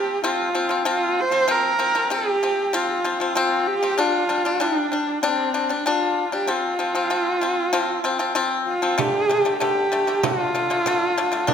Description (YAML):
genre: mongolian traditional, Mongolian folk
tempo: 96 BPM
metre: 4/4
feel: straight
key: F zhi mode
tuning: A4 = 443 Hz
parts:
  - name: clear horsehead fiddle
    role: melody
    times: 0.0-11.5 s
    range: C4 to C5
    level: -22 LUFS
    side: right 2 dB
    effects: none
  - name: pipa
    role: arpeggios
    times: 0.0-11.5 s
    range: D3 to D4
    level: -22 LUFS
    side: left 4 dB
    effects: none
  - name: frame drum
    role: percussion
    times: 9.0-11.5 s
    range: none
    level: -28 LUFS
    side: right 8 dB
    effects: none
room: wet recital hall reverb, RT60 1.4 s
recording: none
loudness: -19 LUFS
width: side -8 dB against mid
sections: 0.0-9.0 A section; 9.0-11.5 B section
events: none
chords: 0.0 F5; 4.0 G5; 6.5 F5; 9.0 D5